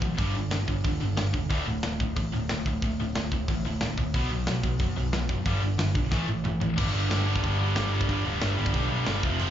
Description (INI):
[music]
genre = punk rock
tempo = 182 BPM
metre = 4/4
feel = straight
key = unclear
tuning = A4 = 440 Hz
[part]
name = tight distorted guitar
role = riff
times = 0.0-9.5 s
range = D2 to B3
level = -32 LUFS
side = left 10 dB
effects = distortion, slapback echo
[part]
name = tight distorted guitar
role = riff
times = 0.0-9.5 s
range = D2 to B3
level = -33 LUFS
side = right 13 dB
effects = distortion, slapback echo
[part]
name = picked electric bass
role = bass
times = 0.0-9.5 s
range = D1 to B1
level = -28 LUFS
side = equal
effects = none
[part]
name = tight metal drum kit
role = drums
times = 0.0-9.5 s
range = crash cymbal, hi-hat, kick drum, snare drum, toms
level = -31 LUFS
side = equal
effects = none
[part]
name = distorted electric guitar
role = riff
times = 6.8-9.5 s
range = F2 to G3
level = -34 LUFS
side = right 3 dB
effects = distortion, slapback echo
[sound]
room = little or no reverb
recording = live gig heard through the venue's PA, club reverb, nothing above 7.5 kHz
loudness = -25 LUFS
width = side -10 dB against mid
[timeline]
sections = 0.0-6.8 A section; 6.8-9.5 B section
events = drum fill 6.1-6.8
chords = 0.2 G5; 1.5 D5; 4.1 B5; 5.5 G; 6.1 A5; 6.8 G